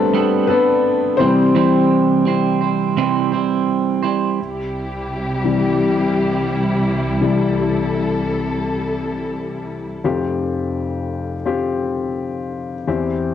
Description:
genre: piano-driven pop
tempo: 85 BPM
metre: 4/4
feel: straight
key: C major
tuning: A4 = 440 Hz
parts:
  - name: warm upright piano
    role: accompaniment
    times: 0.0-13.3 s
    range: F1 to C5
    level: -18 LUFS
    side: left 4 dB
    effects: cassette tape
  - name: clean electric guitar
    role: riff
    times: 0.0-4.4 s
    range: C3 to C5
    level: -18 LUFS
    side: right 9 dB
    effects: spring reverb, cassette tape
  - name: muted studio string section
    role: sustained chords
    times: 4.4-10.0 s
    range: C2 to A4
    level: -21 LUFS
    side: right 1 dB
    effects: cassette tape
room: wet studio reverb, RT60 0.6 s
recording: home recording on cassette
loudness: -16 LUFS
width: side -9 dB against mid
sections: 0.0-4.4 A section; 4.4-10.0 B section; 10.0-13.3 C section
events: upright piano solo 0.0-4.4, 4.4-10.0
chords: 0.0 Gadd9; 1.2 C; 10.0 Fsus2

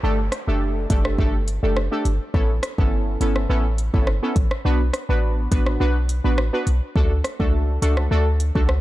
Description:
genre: dancehall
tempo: 104 BPM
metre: 4/4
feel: straight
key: D major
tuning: A4 = 440 Hz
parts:
  - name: synth brass stab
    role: accompaniment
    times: 0.0-8.7 s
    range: A3 to B4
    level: -25 LUFS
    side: right 1 dB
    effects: chorus
  - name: clean 808-style bass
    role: bass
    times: 0.0-8.8 s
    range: F#1 to D2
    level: -21 LUFS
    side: equal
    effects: none
  - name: downlifter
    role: sound effects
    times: 0.0-2.3 s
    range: none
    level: -42 LUFS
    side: equal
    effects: none
  - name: afro-pop drum kit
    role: drums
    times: 0.3-8.8 s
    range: hi-hat, kick drum, rim click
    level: -22 LUFS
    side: equal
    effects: none
room: digital ambience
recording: dark, warm production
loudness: -18 LUFS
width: side -16 dB against mid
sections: 0.0-8.8 A section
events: kick muted 5.8-7.0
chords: 0.0 Gsus2; 2.3 Aadd9; 4.7 Bm; 7.0 D

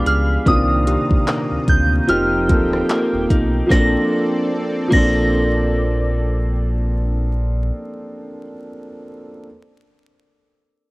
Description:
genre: contemporary R&B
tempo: 74 BPM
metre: 4/4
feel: swing 58% on 16ths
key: Bb major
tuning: A4 = 439 Hz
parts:
  - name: clear concert grand piano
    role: accompaniment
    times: 0.0-9.5 s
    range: Bb2 to A4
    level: -21 LUFS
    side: right 1 dB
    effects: none
  - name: warm analog pad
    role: sustained chords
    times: 0.0-7.7 s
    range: Bb3 to Eb6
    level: -29 LUFS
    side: equal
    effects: chorus
  - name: clean electric guitar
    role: arpeggios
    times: 0.0-8.5 s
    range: C3 to C5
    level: -26 LUFS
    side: left 2 dB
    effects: spring reverb
  - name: synth chime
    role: texture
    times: 0.0-8.4 s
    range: D4 to G5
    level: -36 LUFS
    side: left 2 dB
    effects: none
  - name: soft synth bell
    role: melody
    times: 0.1-8.4 s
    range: Eb6 to Bb6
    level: -22 LUFS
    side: equal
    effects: chorus, cassette tape, tape echo
  - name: sub bass with octave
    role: bass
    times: 0.1-7.7 s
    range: D1 to D2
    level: -20 LUFS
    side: equal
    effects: none
  - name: smooth R&B drum kit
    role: drums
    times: 0.1-5.2 s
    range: crash cymbal, handclaps, hi-hat, kick drum, rim click, snare drum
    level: -17 LUFS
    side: equal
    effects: none
room: digital ambience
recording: home recording on cassette, vinyl crackle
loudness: -15 LUFS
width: side -23 dB against mid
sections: 0.0-3.7 A section; 3.7-6.9 B section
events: none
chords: 0.5 Cm11; 2.1 F9sus4; 3.7 Bbmaj9

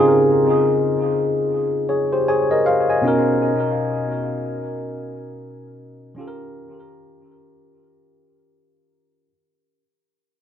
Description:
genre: reggae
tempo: 77 BPM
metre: 4/4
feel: swing 60% on 16ths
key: unclear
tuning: A4 = 441 Hz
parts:
  - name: bright tine electric piano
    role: accompaniment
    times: 0.0-9.3 s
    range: B2 to Ab5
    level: -17 LUFS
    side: left 1 dB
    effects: tape echo
room: moderate studio reverb, RT60 0.9 s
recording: band playing live in one room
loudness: -17 LUFS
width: side -9 dB against mid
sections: 0.0-9.3 A section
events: fade-out 0.0-9.3; tine electric piano fill 1.9-3.1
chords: 0.0 Dbmaj7; 3.1 Bmaj7; 6.2 Eb7

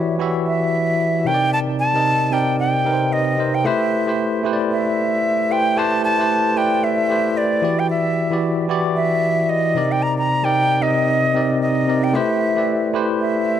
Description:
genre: amapiano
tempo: 113 BPM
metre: 4/4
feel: swing 58% on 16ths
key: A dorian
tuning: A4 = 441 Hz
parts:
  - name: breathy bright concert flute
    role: melody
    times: 0.0-13.6 s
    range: D5 to Bb5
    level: -20 LUFS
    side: equal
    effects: tape echo
  - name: bell-like tine electric piano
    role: accompaniment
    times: 0.0-13.6 s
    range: C3 to E5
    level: -19 LUFS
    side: equal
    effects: medium stereo tremolo
room: light reverb, studio reverb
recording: dark, warm production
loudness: -16 LUFS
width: side -10 dB against mid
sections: 0.0-13.6 A section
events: none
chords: 0.0 Em7; 1.3 Cm7; 3.6 Am7; 7.6 Em7; 9.8 Cm7; 12.1 Am7

